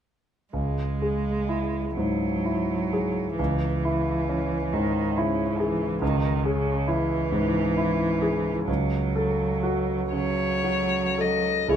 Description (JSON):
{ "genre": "classical, slow romantic movement for piano trio", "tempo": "36-47 BPM (dotted quarters)", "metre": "6/8", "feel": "rubato", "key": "C# minor", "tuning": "A4 = 441 Hz", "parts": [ { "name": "rich cello", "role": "second line", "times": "0.5-11.5 s", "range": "C#3 to G#3", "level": "-28 LUFS", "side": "right 3 dB", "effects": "none" }, { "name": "clear concert grand piano", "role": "accompaniment", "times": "0.5-11.8 s", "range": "C#2 to A4", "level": "-24 LUFS", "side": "equal", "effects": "none" }, { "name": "rich violin", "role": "melody", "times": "10.1-11.8 s", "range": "C#5 to D#5", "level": "-26 LUFS", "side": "left 8 dB", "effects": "none" } ], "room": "light reverb", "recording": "minimal, uncompressed stereo recording", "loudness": "-23 LUFS", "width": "side -9 dB against mid", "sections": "0.5-11.7 A section", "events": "none", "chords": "0.5 C#m; 8.7 F#m/C#", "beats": "| 0.54 1.97 | 3.39 4.73 | 6.02 7.32 | 8.68 10.14 | 11.71" }